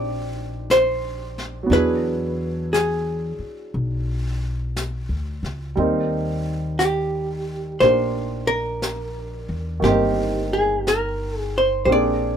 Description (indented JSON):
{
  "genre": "jazz ballad",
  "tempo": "59 BPM",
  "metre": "4/4",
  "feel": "swing 66% on 8ths",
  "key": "Eb major",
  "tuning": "A4 = 440 Hz",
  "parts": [
    { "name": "archtop guitar, miked and amplified", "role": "melody", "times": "0.0-12.4 s", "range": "G4 to D5", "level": "-21 LUFS", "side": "equal", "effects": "none" },
    { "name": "warm upright piano", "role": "accompaniment", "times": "0.0-12.4 s", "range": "Eb3 to Bb4", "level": "-25 LUFS", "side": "right 2 dB", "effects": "none" },
    { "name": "upright bass", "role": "bass", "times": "0.0-12.4 s", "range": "G1 to E2", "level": "-26 LUFS", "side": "left 1 dB", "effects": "none" },
    { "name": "jazz brush drum kit", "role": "drums", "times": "0.7-12.4 s", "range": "brushed snare drum, hi-hat, snare drum", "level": "-33 LUFS", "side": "left 2 dB", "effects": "none" }
  ],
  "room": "light reverb",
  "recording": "minimal, uncompressed stereo recording",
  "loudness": "-20 LUFS",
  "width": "side -8 dB against mid",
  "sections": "0.0-12.4 A section",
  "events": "none",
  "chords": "0.0 Eb69; 1.7 E9; 5.8 Eb6"
}